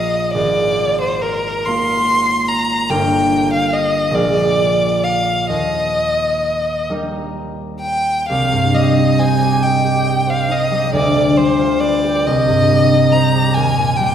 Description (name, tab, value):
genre	classical, romantic duo for violin and harp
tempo	41-49 BPM (dotted quarters)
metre	6/8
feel	rubato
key	Eb major, C minor from 8.3 s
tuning	A4 = 440 Hz
part	clear violin	melody	0.0-14.1 s	Bb4 to C6	-16 LUFS	left 1 dB	none
part	concert harp	accompaniment	0.0-14.1 s	G1 to Eb5	-17 LUFS	right 1 dB	none
room	wet scoring stage reverb, RT60 1.9 s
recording	heard from further back in the room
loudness	-13 LUFS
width	side -9 dB against mid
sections	0.0-8.3 A section; 8.3-14.1 B section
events	none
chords	0.3 Bb5/Ab; 2.9 Eb/G; 4.1 Bb7; 5.5 Eb; 8.3 Cm; 10.9 G7/D; 12.3 Cm; 13.6 Eb